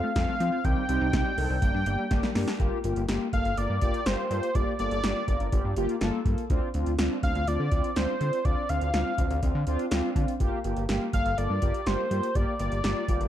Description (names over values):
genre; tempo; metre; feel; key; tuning
synth-pop; 123 BPM; 4/4; straight; G minor; A4 = 437 Hz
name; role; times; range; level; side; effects
octave-doubled lead; melody; 0.0-13.3 s; C5 to G5; -30 LUFS; equal; chorus
mellow synth brass; accompaniment; 0.0-13.3 s; Bb3 to C5; -31 LUFS; left 1 dB; chorus
resonant blip pluck; arpeggios; 0.0-2.5 s; D3 to F4; -36 LUFS; left 1 dB; phaser, tape echo
fat analog bass; bass; 0.2-13.3 s; G1 to F3; -29 LUFS; equal; none
electro analog drum machine; drums; 0.2-13.3 s; hi-hat, kick drum, snare drum; -29 LUFS; equal; overdrive
room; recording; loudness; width
light reverb, digital ambience; dark, warm production; -24 LUFS; side -11 dB against mid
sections
0.0-2.6 A section; 2.6-13.3 B section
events
drum fill 2.1-2.6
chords
0.0 F; 0.6 Cm; 1.6 Gm; 2.6 Gm7; 6.5 Dm7; 10.4 Gm7